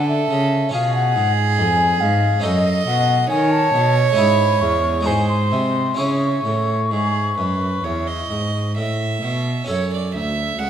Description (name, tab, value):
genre	classical, baroque-style sonata movement with continuo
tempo	64-71 BPM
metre	4/4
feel	rubato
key	C# minor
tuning	A4 = 440 Hz
part	mellow baroque flute	melody	0.0-8.8 s	D#5 to C#6	-21 LUFS	left 5 dB	none
part	rich violin	second line	0.0-10.7 s	G#4 to F#5	-22 LUFS	right 7 dB	none
part	harpsichord	accompaniment	0.0-10.7 s	C#2 to B4	-26 LUFS	right 1 dB	none
part	dark cello	bass	0.0-10.7 s	C#2 to D#3	-21 LUFS	equal	none
room	moderate recital hall reverb, RT60 1.5 s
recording	none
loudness	-16 LUFS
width	side -9 dB against mid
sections	0.0-9.7 A section; 9.7-10.7 A section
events	none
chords	0.0 Bm; 0.7 C#7; 2.4 D#m7b5/F#; 4.2 C#m/G#; 5.1 G#7; 6.0 C#m; 9.7 F#m